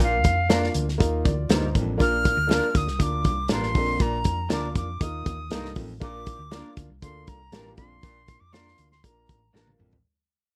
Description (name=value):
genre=uptempo 1960s-style soul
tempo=120 BPM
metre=4/4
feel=straight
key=Bb major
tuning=A4 = 440 Hz
part: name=bright reedy jazz flute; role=melody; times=0.0-9.5 s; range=F5 to F6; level=-30 LUFS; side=equal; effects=none
part: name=warm upright piano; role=accompaniment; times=0.0-9.9 s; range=Bb3 to D5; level=-34 LUFS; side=equal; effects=none
part: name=breathy baritone saxophone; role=riff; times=0.0-10.0 s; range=F2 to Bb2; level=-35 LUFS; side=equal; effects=none
part: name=hollow-body short-scale fingered electric bass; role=bass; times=0.0-10.0 s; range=A1 to F2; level=-32 LUFS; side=equal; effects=none
part: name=warm soul drum kit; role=drums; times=0.0-10.0 s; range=hi-hat, kick drum, snare drum, toms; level=-26 LUFS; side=equal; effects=none
part: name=congas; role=percussion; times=0.3-9.9 s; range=none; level=-41 LUFS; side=equal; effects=none
part: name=electric guitar through a small old amp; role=stabs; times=0.5-9.7 s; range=Bb3 to Bb4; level=-33 LUFS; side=equal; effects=lush chorus
room=light reverb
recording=none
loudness=-24 LUFS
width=mono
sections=0.0-10.0 A section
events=fade-out 0.0-10.0; drum fill 9.5-10.0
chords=0.0 Bb; 1.0 Ebsus2; 2.0 Bb; 5.0 Ebsus2; 6.0 Bb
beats=| 0.00 0.50 1.00 1.50 | 2.00 2.50 3.01 3.51 | 4.01 4.51 5.01 5.51 | 6.01 6.52 7.02 7.52 | 8.02 8.53 9.03 9.53